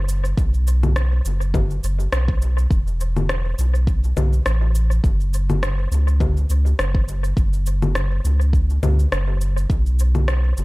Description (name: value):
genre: organic downtempo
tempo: 103 BPM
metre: 4/4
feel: swing 55% on 16ths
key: F# minor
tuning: A4 = 444 Hz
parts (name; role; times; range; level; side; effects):
- warm sub bass; bass; 0.0-10.6 s; E1 to C#2; -18 LUFS; equal; tube saturation, sidechain pumping
- electronic cabasa, congas and rim click; drums; 0.1-10.6 s; none; -26 LUFS; left 2 dB; small room reverb, dub echo
- electronic kick drum; drums; 0.4-9.8 s; none; -20 LUFS; equal; small room reverb
room: little or no reverb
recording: echo-heavy mix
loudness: -17 LUFS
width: side -22 dB against mid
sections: 0.0-10.6 A section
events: none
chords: none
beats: | 0.38 0.96 1.55 2.13 | 2.71 3.29 3.88 4.46 | 5.04 5.62 6.21 6.79 | 7.37 7.95 8.54 9.12 | 9.70 10.28